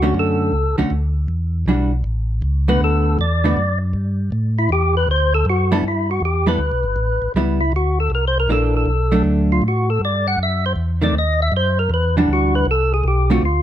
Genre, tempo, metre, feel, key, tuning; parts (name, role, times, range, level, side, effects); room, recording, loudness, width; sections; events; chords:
jazz; 158 BPM; 4/4; swing 65% on 8ths; D major, G major from 5.8 s; A4 = 440 Hz
percussive tonewheel organ; melody; 0.0-13.6 s; D4 to F#5; -20 LUFS; left 1 dB; slow rotary speaker, overdrive, plate reverb
vintage hollow-body jazz guitar; accompaniment; 0.0-13.4 s; D3 to A4; -19 LUFS; right 2 dB
mellow tonewheel organ; bass; 0.0-13.6 s; G1 to A2; -19 LUFS; equal; slow rotary speaker
light reverb; close, detailed microphones; -16 LUFS; side -11 dB against mid
0.0-5.8 A section; 5.8-13.6 A section
tonewheel organ solo 0.0-13.6
0.0 Dmaj7; 1.3 Em9; 2.0 Aadd9; 2.8 D6; 4.3 A5; 5.1 D; 5.8 G69; 7.4 C#m7b5; 8.1 C9; 8.9 Bm7; 10.4 F#m7b5; 11.1 Ebm6; 11.9 Em9